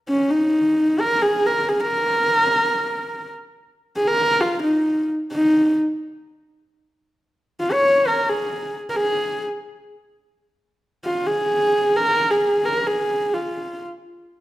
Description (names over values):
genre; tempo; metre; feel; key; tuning
mongolian traditional; free time; none; none; Bb yu mode; A4 = 440 Hz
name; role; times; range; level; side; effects
warm horsehead fiddle; melody; 0.1-13.8 s; Db4 to Db5; -18 LUFS; equal; none
room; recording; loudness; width
wet recital hall reverb, RT60 1.4 s; none; -18 LUFS; side -15 dB against mid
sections
0.0-3.7 A section; 3.7-14.4 B section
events
none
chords
none